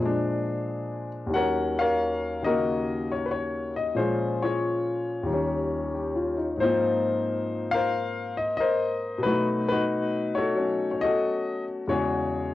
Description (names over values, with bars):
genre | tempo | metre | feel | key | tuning
solo jazz | 91 BPM | 4/4 | swing 69% on 8ths | Eb minor | A4 = 442 Hz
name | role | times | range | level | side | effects
warm concert grand piano | solo | 0.0-12.5 s | Eb2 to Gb5 | -24 LUFS | left 2 dB | cassette tape
room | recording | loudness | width
wet booth ambience, RT60 0.2 s | home recording on cassette | -24 LUFS | side -14 dB against mid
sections
0.0-6.6 A section; 6.6-12.5 B section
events
none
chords
0.0 Bb7; 1.3 Ebm7; 4.0 Bbm7; 5.3 Eb7; 6.6 Ab69; 9.2 B7; 11.9 E69